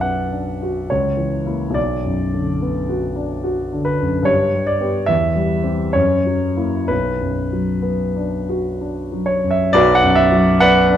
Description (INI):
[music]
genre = classical, romantic character piece for solo piano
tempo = 63-74 BPM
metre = 3/4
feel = rubato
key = B minor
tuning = A4 = 440 Hz
[part]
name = warm concert grand piano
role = solo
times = 0.0-11.0 s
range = B1 to F#5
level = -16 LUFS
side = equal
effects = none
[sound]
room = moderate recital hall reverb, RT60 1.5 s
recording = close, detailed microphones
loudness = -16 LUFS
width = side -10 dB against mid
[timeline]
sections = 0.0-9.7 A section; 9.7-11.0 B section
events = none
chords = 0.0 Bm; 0.9 A#dim/C#; 1.8 Bm; 4.3 G; 5.1 C/E; 6.0 F#7; 6.9 Bm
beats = 0.03 0.90 | 1.76 2.61 3.44 | 4.28 5.11 5.96 | 6.90 7.85 8.80 | 9.73 10.59